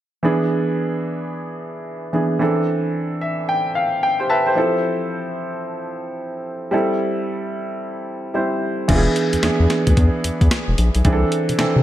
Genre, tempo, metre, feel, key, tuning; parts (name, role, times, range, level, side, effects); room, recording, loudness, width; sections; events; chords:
R&B, new jack swing; 111 BPM; 4/4; swing 63% on 16ths; A4 = 440 Hz
warm grand piano; accompaniment; 0.2-11.8 s; E3 to A5; -19 LUFS; right 1 dB
round analog bass; bass; 8.9-11.8 s; E1 to C3; -17 LUFS; left 1 dB
clean 12-bit digital drum machine; drums; 8.9-11.7 s; crash cymbal, hi-hat, kick drum, snare drum; -20 LUFS; left 1 dB
light reverb; -17 LUFS; side -12 dB against mid
0.2-8.9 A section; 8.9-11.8 B section
grand piano fill 2.9-4.6
0.2 E7; 2.4 C69; 4.6 Fmaj7; 6.7 Am7; 8.9 E7; 11.1 C69